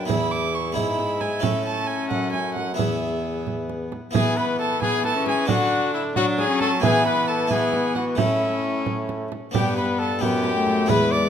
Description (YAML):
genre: classical, renaissance-style consort dance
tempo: 89 BPM (dotted quarters)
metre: 6/8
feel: straight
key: E mixolydian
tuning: A4 = 438 Hz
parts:
  - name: warm cornet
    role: melody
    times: 0.0-11.3 s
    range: E4 to D5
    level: -27 LUFS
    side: left 7 dB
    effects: none
  - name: warm violin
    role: second line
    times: 0.0-11.3 s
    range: E5 to D6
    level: -28 LUFS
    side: right 5 dB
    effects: none
  - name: harpsichord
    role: accompaniment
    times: 0.0-11.3 s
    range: E2 to A4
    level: -28 LUFS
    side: left 1 dB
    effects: none
  - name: warm viola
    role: accompaniment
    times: 0.0-11.3 s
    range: G#3 to E4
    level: -27 LUFS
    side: left 3 dB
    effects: none
  - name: warm bassoon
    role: bass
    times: 0.0-11.3 s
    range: E2 to F#3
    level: -28 LUFS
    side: right 1 dB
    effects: none
  - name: frame drum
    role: percussion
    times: 0.1-11.1 s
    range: none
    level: -27 LUFS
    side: right 6 dB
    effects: none
room: moderate recital hall reverb, RT60 1.8 s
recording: none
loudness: -20 LUFS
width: side -8 dB against mid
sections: 0.0-4.1 A section; 4.1-11.3 A section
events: none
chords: 0.1 E; 1.4 A; 2.8 E; 5.5 D; 6.8 E; 8.2 A; 9.5 G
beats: | 0.09 0.76 | 1.43 2.10 | 2.78 3.46 | 4.15 4.82 | 5.49 6.17 | 6.84 7.51 | 8.18 8.86 | 9.54 10.22 | 10.89